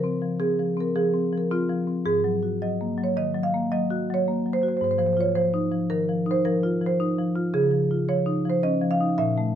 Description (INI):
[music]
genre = classical, contemporary piece for solo marimba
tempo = 110 BPM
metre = 5/4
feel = rubato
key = unclear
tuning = A4 = 440 Hz
[part]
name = marimba with medium hard mallets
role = solo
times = 0.0-9.6 s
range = Ab2 to F5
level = -22 LUFS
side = equal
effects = none
[sound]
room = light reverb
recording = dark, warm production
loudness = -22 LUFS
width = side -9 dB against mid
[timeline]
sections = 0.0-9.6 A section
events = none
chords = 0.0 Dbmaj7; 2.1 Absus2; 4.8 Fm7/Ab; 7.5 Dbadd9